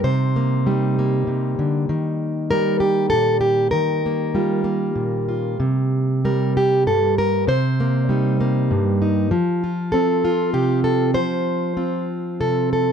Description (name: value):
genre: folk, solo fingerstyle acoustic guitar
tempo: 98 BPM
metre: 3/4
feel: rubato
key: C dorian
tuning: A4 = 440 Hz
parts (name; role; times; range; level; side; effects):
- fingerpicked plugged-in steel-string acoustic guitar; solo; 0.0-12.9 s; G2 to C5; -17 LUFS; equal; none
room: light reverb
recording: dark, warm production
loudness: -18 LUFS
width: side -7 dB against mid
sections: 0.0-12.9 A section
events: none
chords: 0.0 Cm7; 1.9 Ebadd9; 5.6 Cm7; 9.3 F